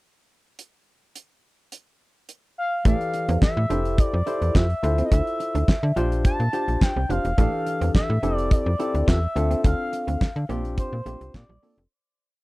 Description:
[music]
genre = early-eighties boogie funk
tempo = 106 BPM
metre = 4/4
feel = straight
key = unclear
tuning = A4 = 439 Hz
[part]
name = damped 70s drum kit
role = drums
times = 0.6-11.9 s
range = handclaps, hi-hat, kick drum, snare drum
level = -20 LUFS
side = equal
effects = none
[part]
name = expressive synth lead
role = melody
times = 2.6-11.8 s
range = C5 to A5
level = -28 LUFS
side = equal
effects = chorus
[part]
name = barky tine electric piano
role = accompaniment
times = 2.8-11.8 s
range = E3 to D5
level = -28 LUFS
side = left 2 dB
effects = none
[part]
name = clean electric guitar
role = riff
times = 2.9-11.7 s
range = G3 to G4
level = -31 LUFS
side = right 5 dB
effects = analog chorus
[part]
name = slap-like FM bass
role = bass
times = 2.9-11.9 s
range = E1 to D3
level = -24 LUFS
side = equal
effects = none
[sound]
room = little or no reverb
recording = dry, close 1970s-style studio recording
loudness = -20 LUFS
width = side -20 dB against mid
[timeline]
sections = 0.6-2.9 pickup bar; 2.9-11.9 verse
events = fade-out 9.6-11.9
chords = 0.6 N.C.; 2.9 A7sus4; 3.7 Fmaj9; 4.8 Dm9; 6.0 Bb6; 7.4 A7sus4; 8.2 Fmaj9; 9.4 Dm7; 10.5 Bb6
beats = | 0.59 1.16 1.72 2.29 | 2.85 3.42 3.98 4.55 | 5.12 5.68 6.25 6.82 | 7.38 7.95 8.51 9.08 | 9.64 10.21 10.78 11.34

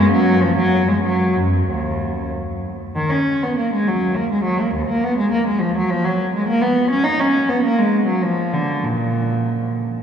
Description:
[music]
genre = classical, baroque-style suite movement for unaccompanied cello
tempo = 91-104 BPM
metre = 3/4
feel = rubato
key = unclear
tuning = A4 = 438 Hz
[part]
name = warm cello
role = solo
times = 0.0-9.8 s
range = Eb2 to Eb4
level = -16 LUFS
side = equal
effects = none
[sound]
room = wet cathedral reverb, RT60 6.3 s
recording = recorded in a church or concert hall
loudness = -16 LUFS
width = side -8 dB against mid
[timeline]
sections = 0.0-3.0 A section; 3.0-10.0 A section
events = none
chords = none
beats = 0.42 | 1.03 1.67 2.30 | 2.95 3.57 4.16 | 4.74 5.33 5.91 | 6.48 7.06 7.64 | 8.23 8.84 9.45

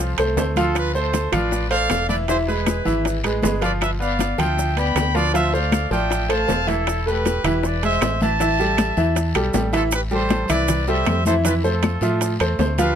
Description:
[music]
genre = latin, salsa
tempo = 157 BPM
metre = 4/4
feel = straight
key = A minor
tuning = A4 = 440 Hz
[part]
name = bright trumpet section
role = melody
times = 0.0-13.0 s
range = E4 to B5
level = -24 LUFS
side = right 1 dB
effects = none
[part]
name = bright upright piano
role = accompaniment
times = 0.0-13.0 s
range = E3 to G5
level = -22 LUFS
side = right 1 dB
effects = none
[part]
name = deep dub fingered electric bass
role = bass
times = 0.0-13.0 s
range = E1 to A2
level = -24 LUFS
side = equal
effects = none
[part]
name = congas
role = percussion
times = 0.0-13.0 s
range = none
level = -27 LUFS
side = left 1 dB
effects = none
[part]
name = bongos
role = percussion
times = 0.2-13.0 s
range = none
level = -29 LUFS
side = left 9 dB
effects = none
[part]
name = claves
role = percussion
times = 0.2-12.6 s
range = none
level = -30 LUFS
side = left 10 dB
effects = none
[part]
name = maracas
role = percussion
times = 0.2-13.0 s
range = none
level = -33 LUFS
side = right 4 dB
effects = none
[part]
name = timbales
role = percussion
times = 0.2-13.0 s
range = none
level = -27 LUFS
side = right 8 dB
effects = none
[part]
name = guiro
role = percussion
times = 0.4-13.0 s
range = none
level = -37 LUFS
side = left 5 dB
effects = none
[sound]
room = little or no reverb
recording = close, detailed microphones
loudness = -18 LUFS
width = side -8 dB against mid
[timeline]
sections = 0.0-9.9 A section; 9.9-13.0 A section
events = none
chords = 0.0 F; 0.8 Dm7; 2.3 E; 3.8 G7; 5.3 Dm7; 6.9 Esus4; 7.6 E; 8.4 A5; 9.9 Am7; 11.4 Fmaj7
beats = 0.37 | 0.75 1.14 1.52 1.90 | 2.29 2.67 3.05 3.43 | 3.82 4.20 4.58 4.96 | 5.35 5.73 6.11 6.49 | 6.87 7.25 7.63 8.02 | 8.40 8.78 9.16 9.54 | 9.92 10.30 10.69 11.07 | 11.45 11.83 12.21 12.59

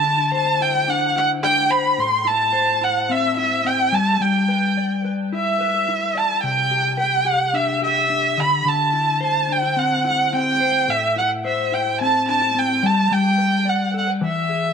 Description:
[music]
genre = indie pop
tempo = 108 BPM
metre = 4/4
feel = straight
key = A dorian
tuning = A4 = 440 Hz
[part]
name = warm viola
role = melody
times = 0.0-14.7 s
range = E5 to C6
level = -18 LUFS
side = right 2 dB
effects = lush chorus
[part]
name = mellow electric guitar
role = accompaniment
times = 0.0-14.7 s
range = A2 to D5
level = -23 LUFS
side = left 4 dB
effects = lush chorus, vibrato effect
[sound]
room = moderate spring reverb, RT60 1.8 s, studio reverb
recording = none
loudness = -17 LUFS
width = side -6 dB against mid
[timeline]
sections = 0.0-14.7 A section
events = none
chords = 0.0 Dsus2; 2.0 Am; 3.9 G6; 6.4 Cmaj9; 8.4 D9sus4; 10.9 Am; 12.8 G; 14.2 E7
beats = 0.33 0.88 1.44 | 1.99 2.55 3.10 3.66 | 4.21 4.77 5.32 5.88 | 6.44 6.99 7.55 8.11 | 8.66 9.22 9.78 10.33 | 10.89 11.45 12.00 12.56 | 13.12 13.67 14.23

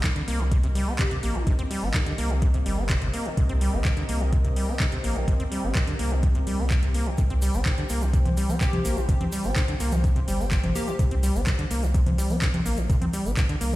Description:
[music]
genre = acid house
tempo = 126 BPM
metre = 4/4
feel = straight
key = C minor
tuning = A4 = 441 Hz
[part]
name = warm analog pad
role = sustained chords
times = 0.0-13.8 s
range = C4 to G5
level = -36 LUFS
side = left 1 dB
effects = chorus, sidechain pumping
[part]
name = overdriven acid bass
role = riff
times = 0.0-13.8 s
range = C3 to C4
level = -30 LUFS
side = equal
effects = tube saturation, analog delay
[part]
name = electro analog drum machine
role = drums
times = 0.0-13.8 s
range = congas, handclaps, hi-hat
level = -31 LUFS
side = equal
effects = overdrive
[part]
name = electronic kick drum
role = drums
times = 0.0-13.5 s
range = none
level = -23 LUFS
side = equal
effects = none
[part]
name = saturated sub bass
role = bass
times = 0.3-13.8 s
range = G1 to C2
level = -25 LUFS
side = equal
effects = sidechain pumping
[part]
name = plucky unison lead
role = melody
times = 1.0-1.5, 8.6-10.9 s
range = G4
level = -37 LUFS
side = left 2 dB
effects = tape echo
[part]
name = egg shaker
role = percussion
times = 7.2-13.8 s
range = none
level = -41 LUFS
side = right 2 dB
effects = none
[sound]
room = light reverb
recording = played on a big sound system in a bare room, stone room reverb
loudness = -22 LUFS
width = side -17 dB against mid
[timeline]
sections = 0.0-13.8 A section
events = none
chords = 0.0 Cm7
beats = 0.04 0.52 0.99 | 1.47 1.94 2.42 2.90 | 3.37 3.85 4.33 4.80 | 5.28 5.75 6.23 6.71 | 7.18 7.66 8.13 8.61 | 9.09 9.56 10.04 10.52 | 10.99 11.47 11.94 12.42 | 12.90 13.37

